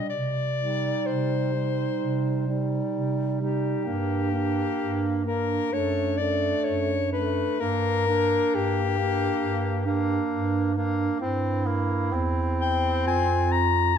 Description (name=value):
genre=classical, lyrical piece for single-reed quartet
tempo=65 BPM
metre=4/4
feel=uneven beats, rubato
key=unclear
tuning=A4 = 440 Hz
part: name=clear soprano saxophone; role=melody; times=0.0-14.0 s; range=G4 to Bb5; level=-27 LUFS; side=left 7 dB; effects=none
part: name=warm clarinet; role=second line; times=0.0-14.0 s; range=D4 to F4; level=-30 LUFS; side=right 11 dB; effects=none
part: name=warm tenor saxophone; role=accompaniment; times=0.0-14.0 s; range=G3 to C4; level=-31 LUFS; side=left 4 dB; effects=none
part: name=dark bass clarinet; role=bass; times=0.1-14.0 s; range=E2 to C3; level=-28 LUFS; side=right 2 dB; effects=none
room=moderate recital hall reverb, RT60 1.4 s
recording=dark, warm production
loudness=-23 LUFS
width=side -8 dB against mid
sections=0.0-14.0 A section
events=none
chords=0.1 Cm; 3.9 Gm; 5.7 D/F#; 7.6 Gm; 11.2 C7/G; 13.1 Fm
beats=| 0.11 1.07 2.02 2.95 | 3.87 4.79 5.71 6.65 | 7.60 8.54 9.42 10.31 | 11.20 12.12 13.05 13.96